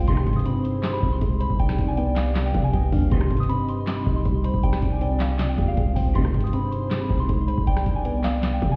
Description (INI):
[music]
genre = hip hop, trap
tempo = 158 BPM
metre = 4/4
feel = half-time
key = unclear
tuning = A4 = 440 Hz
[part]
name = soft synth bell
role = melody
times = 0.0-8.8 s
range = F5 to Eb6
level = -34 LUFS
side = equal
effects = chorus, phaser, low-pass filter, tape echo
[part]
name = soft octave-layered synth lead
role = second line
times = 0.0-8.8 s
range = C5 to F5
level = -37 LUFS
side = equal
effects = chorus, phaser, tape echo
[part]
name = warbly dusty pluck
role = accompaniment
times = 0.0-8.8 s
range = C2 to C5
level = -30 LUFS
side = equal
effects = chorus, low-pass filter
[part]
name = deep dark ambient pad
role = sustained chords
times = 0.0-8.8 s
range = C3 to B4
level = -36 LUFS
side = equal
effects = chorus, built-in reverb
[part]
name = hard-hitting 808-style bass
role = bass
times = 0.0-8.8 s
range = C2 to C3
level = -27 LUFS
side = equal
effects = none
[part]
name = warm symphonic string section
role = stabs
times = 0.1-0.4, 3.1-3.5, 6.2-6.5 s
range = G2 to Eb3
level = -33 LUFS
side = equal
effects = none
[part]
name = booming analog drum machine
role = drums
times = 0.1-8.8 s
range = handclaps, hi-hat, kick drum, rim click, snare drum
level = -27 LUFS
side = equal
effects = none
[sound]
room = little or no reverb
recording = heard muffled through a wall, stone room reverb, EQ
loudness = -23 LUFS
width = mono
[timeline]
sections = 0.0-8.8 A section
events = none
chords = 0.1 Ab/C; 1.6 G/C; 3.1 Cm; 4.6 Fm/C; 6.2 Ab/C; 7.7 G/C